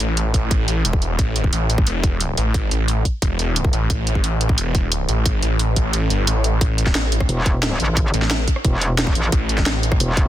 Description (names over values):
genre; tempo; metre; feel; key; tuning
dark technical drum and bass; 177 BPM; 4/4; straight; unclear; A4 = 440 Hz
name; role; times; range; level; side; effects
snarling distorted saw bass; bass; 0.0-10.0 s; E1 to A1; -19 LUFS; equal; distortion, overdrive
drum and bass drum kit; drums; 0.0-10.2 s; hi-hat, rim click, snare drum; -23 LUFS; equal; none
electronic kick drum; drums; 0.3-10.2 s; none; -19 LUFS; equal; none
metallic wobble bass; bass; 7.3-10.3 s; E1 to A1; -19 LUFS; equal; chorus, tube saturation
room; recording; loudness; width
digital ambience; dense, heavily limited modern master; -17 LUFS; side -13 dB against mid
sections
0.0-10.3 A section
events
kick drops out 5.9-6.6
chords
0.0 A5